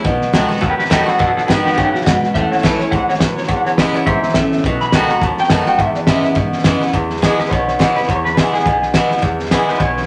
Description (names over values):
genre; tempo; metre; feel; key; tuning
rockabilly; 209 BPM; 4/4; swing 58% on 8ths; E major; A4 = 436 Hz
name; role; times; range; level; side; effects
picked swing-style acoustic guitar; accompaniment; 0.0-10.1 s; E2 to F#4; -20 LUFS; equal; none
electric guitar through a small old amp; riff; 0.0-6.9 s; E2 to G#3; -26 LUFS; equal; phaser
upright bass; bass; 0.0-10.1 s; E1 to A2; -30 LUFS; equal; none
cloth-damped thuddy drum kit; drums; 0.1-10.1 s; hi-hat, kick drum, snare drum; -20 LUFS; equal; none
electric guitar through a small old amp; melody; 0.6-10.1 s; D#4 to B5; -21 LUFS; equal; tremolo
room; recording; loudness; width
wet large studio reverb, RT60 1.3 s; none; -15 LUFS; mono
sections
0.0-6.9 A section; 6.9-10.1 B section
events
none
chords
0.1 B7; 2.4 A; 3.5 E; 4.6 B7; 5.8 E